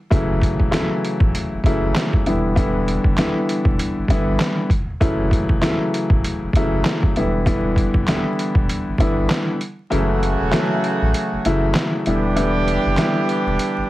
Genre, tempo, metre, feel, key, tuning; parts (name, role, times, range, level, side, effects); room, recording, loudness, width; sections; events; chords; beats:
hip hop, boom-bap hip-hop; 98 BPM; 4/4; swing 58% on 16ths; F# phrygian; A4 = 440 Hz
warm grand piano; accompaniment; 0.1-13.8 s; C#3 to E4; -20 LUFS; left 1 dB; high-pass filter, low-pass filter
sub bass with octave; bass; 0.1-13.8 s; E1 to A1; -23 LUFS; equal
trip hop sampler-style drum kit; drums; 0.1-13.8 s; handclaps, hi-hat, kick drum, snare drum; -20 LUFS; equal
warm horn section; stabs; 9.9-13.9 s; C#3 to G4; -22 LUFS; right 3 dB; high-pass filter, low-pass filter, ping-pong delay
light reverb; heavily compressed radio sound, vinyl crackle; -17 LUFS; side -16 dB against mid
0.0-9.9 A section; 9.9-13.9 B section
kick muted 9.9-13.9
0.1 F#m7; 2.3 Em7; 5.0 F#m7; 7.2 Em7; 9.9 F#m7; 12.1 Em7
| 0.12 0.73 1.34 1.95 | 2.56 3.18 3.79 4.40 | 5.01 5.62 6.24 6.85 | 7.46 8.07 8.69 9.30 | 9.91 10.52 11.14 11.75 | 12.36 12.97 13.59